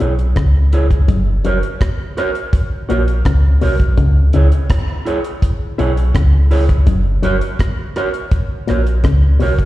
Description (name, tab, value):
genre	roots reggae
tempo	83 BPM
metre	4/4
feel	straight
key	F# mixolydian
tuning	A4 = 444 Hz
part	mellow electric guitar	accompaniment	0.0-9.5 s	E4 to C#5	-22 LUFS	right 3 dB	dub echo, slapback echo
part	electric guitar with an envelope filter	riff	0.0-9.6 s	F#2 to C#3	-21 LUFS	left 3 dB	spring reverb, slapback echo
part	warm sub bass	bass	0.0-9.7 s	F#1 to C#2	-13 LUFS	equal	none
part	deep reggae drum kit	drums	0.0-9.7 s	hi-hat, kick drum, rim click	-17 LUFS	equal	none
room	studio ambience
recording	live gig heard through the venue's PA, recital hall reverb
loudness	-13 LUFS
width	side -16 dB against mid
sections	0.0-1.1 A section; 1.1-9.7 B section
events	none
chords	0.0 C#m; 1.1 F#; 4.0 C#m; 6.9 F#